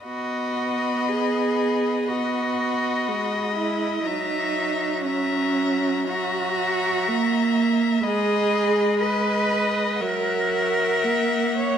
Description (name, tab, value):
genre	classical, slow romantic movement for string quartet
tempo	56-63 BPM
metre	4/4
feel	rubato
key	B major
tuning	A4 = 440 Hz
part	warm violin	melody	0.0-11.8 s	F#5 to B5	-30 LUFS	left 10 dB	none
part	rich violin	second line	0.0-11.8 s	D#5 to E5	-28 LUFS	left 3 dB	none
part	rich cello	bass	0.0-11.8 s	C#4 to C#5	-24 LUFS	right 3 dB	none
part	rich viola	accompaniment	0.1-11.8 s	F#3 to B3	-25 LUFS	right 2 dB	none
room	moderate recital hall reverb, RT60 1.5 s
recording	minimal, uncompressed stereo recording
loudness	-20 LUFS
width	side -8 dB against mid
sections	0.0-11.8 A section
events	none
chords	0.0 B; 4.1 F#7; 8.0 G#m; 10.0 F#7